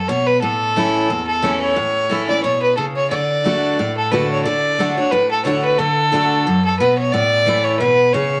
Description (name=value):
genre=bluegrass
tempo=179 BPM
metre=4/4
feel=swing 56% on 8ths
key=D major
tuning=A4 = 440 Hz
part: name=rich fiddle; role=melody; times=0.0-8.4 s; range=A4 to D5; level=-19 LUFS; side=equal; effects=none
part: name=picked steel-string acoustic guitar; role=accompaniment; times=0.0-8.4 s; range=E2 to F#4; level=-22 LUFS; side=equal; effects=none
room=moderate studio reverb, RT60 0.8 s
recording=vinyl crackle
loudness=-17 LUFS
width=mono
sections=0.0-4.5 A section; 4.5-8.4 A section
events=none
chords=0.4 A; 3.1 D; 7.1 A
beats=0.09 | 0.43 0.76 1.10 1.43 | 1.77 2.10 2.44 2.77 | 3.11 3.44 3.78 4.12 | 4.45 4.79 5.12 5.46 | 5.79 6.13 6.46 6.80 | 7.13 7.47 7.80 8.14